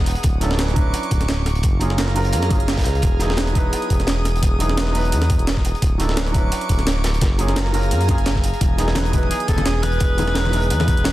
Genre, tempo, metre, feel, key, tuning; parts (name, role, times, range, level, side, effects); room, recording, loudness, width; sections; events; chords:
liquid drum and bass; 172 BPM; 4/4; swing 54% on 16ths; E major; A4 = 438 Hz
felt-muted upright piano; accompaniment; 0.0-11.1 s; F#3 to B4; -26 LUFS; right 2 dB; tape echo
airy breathy pad; sustained chords; 0.0-11.1 s; G#4 to D#6; -28 LUFS; equal; chorus
smooth synth bass; bass; 0.0-11.1 s; D1 to F#2; -21 LUFS; equal
breakbeat sampler-style drum kit; drums; 0.1-11.1 s; hi-hat, snare drum; -25 LUFS; right 1 dB
crunchy breakbeat drum kit; drums; 0.1-11.1 s; hi-hat, snare drum; -31 LUFS; equal; high-pass filter on hats, high-pass filter on snare, high-pass filter on room
electronic kick drum; drums; 0.2-11.0 s; -19 LUFS; equal; overdrive
congas; percussion; 8.6-11.1 s; -28 LUFS; left 5 dB
edgy alto saxophone; melody; 9.3-11.1 s; G#4 to B4; -24 LUFS; left 1 dB; tape echo
little or no reverb; dense, heavily limited modern master; -16 LUFS; side -16 dB against mid
0.0-11.1 A section
0.2 Dmaj9; 1.6 F#maj9; 3.0 Emaj9; 5.8 Dmaj9; 7.2 F#maj9; 8.6 Emaj9